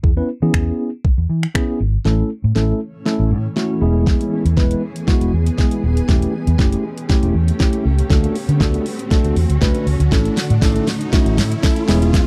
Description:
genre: dance-pop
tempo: 119 BPM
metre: 4/4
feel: straight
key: A major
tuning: A4 = 437 Hz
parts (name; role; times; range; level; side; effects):
- mellow tine electric piano; accompaniment; 0.0-12.3 s; G#3 to B4; -22 LUFS; equal; none
- vintage muted fingered electric bass; bass; 0.0-12.2 s; D#1 to E3; -19 LUFS; equal; sidechain pumping
- smooth R&B drum kit; drums; 0.0-12.3 s; finger snaps, hi-hat, kick drum, shaker, snare drum; -19 LUFS; equal; none
- granular cloud pad; sustained chords; 2.9-12.3 s; D3 to G#4; -29 LUFS; equal; built-in reverb, sidechain pumping
- riser; sound effects; 5.0-12.3 s; none; -34 LUFS; equal; none
- tambourine; percussion; 10.1-12.3 s; none; -40 LUFS; equal; none
room: little or no reverb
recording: dry, close 1970s-style studio recording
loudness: -17 LUFS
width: mono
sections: 0.0-2.1 A section; 2.1-12.3 B section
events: build-up 2.1-12.3; drum fill 2.1-12.3; riser 5.0-12.3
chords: 0.0 E6; 2.1 A; 3.8 E; 6.1 A7/E; 8.1 D; 10.1 A

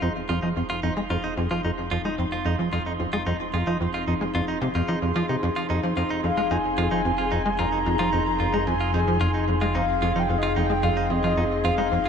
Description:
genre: ambient, sequencer-driven space music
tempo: 111 BPM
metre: 4/4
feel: straight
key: F minor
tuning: A4 = 441 Hz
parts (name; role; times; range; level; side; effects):
- evolving wavetable pad; sustained chords; 0.0-12.1 s; F3 to Ab4; -30 LUFS; left 2 dB; chorus, built-in reverb
- direct-recorded clean electric guitar; arpeggios; 0.0-12.1 s; Eb4 to F4; -30 LUFS; right 1 dB; auto-pan, tape echo
- tight sequencer bass; riff; 0.0-12.0 s; F2 to Ab3; -26 LUFS; equal; lush chorus, tape echo
- fat analog bass; bass; 0.0-12.1 s; F1; -32 LUFS; equal; none
- wind-like tuned noise texture; texture; 0.0-12.1 s; C6; -35 LUFS; right 6 dB; built-in reverb
- breathy flute-like synth lead; melody; 6.2-12.1 s; Eb5 to Bb5; -26 LUFS; left 2 dB; wide subtle chorus, tape echo
room: wet plate reverb, RT60 3.4 s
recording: cassette tape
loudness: -22 LUFS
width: side -7 dB against mid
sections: 0.0-12.1 A section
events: fade-in on ambient pad 0.0-12.1; fade-in on analog synth bass 0.0-12.1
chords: 0.0 Fm7

